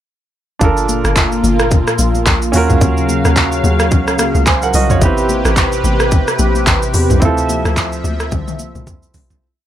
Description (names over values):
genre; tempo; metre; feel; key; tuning
amapiano; 109 BPM; 4/4; swing 58% on 16ths; G dorian; A4 = 435 Hz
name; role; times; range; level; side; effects
clear grand piano; accompaniment; 0.6-9.4 s; B3 to Ab5; -19 LUFS; right 4 dB; none
warm analog pad; sustained chords; 0.6-9.4 s; Bb2 to F5; -19 LUFS; left 1 dB; chorus, sidechain pumping
hollow log drum bass; bass; 0.6-9.4 s; G1 to E2; -17 LUFS; equal; none
organic electronic drum kit; drums; 0.6-9.4 s; handclaps, hi-hat, kick drum, rim click, shaker, toms; -15 LUFS; equal; none
congas; percussion; 0.6-9.3 s; none; -26 LUFS; left 7 dB; none
room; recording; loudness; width
little or no reverb; none; -11 LUFS; side -11 dB against mid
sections
0.6-9.4 drop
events
drop 0.6-9.4; fade-out 7.2-9.4; drum fill 8.3-9.4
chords
0.6 Gm9; 2.5 Ebm9; 5.0 Am9; 7.2 Dm9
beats
| 0.61 1.16 1.71 2.26 | 2.81 3.36 3.91 4.46 | 5.01 5.57 6.12 6.67 | 7.22 7.77 8.32 8.87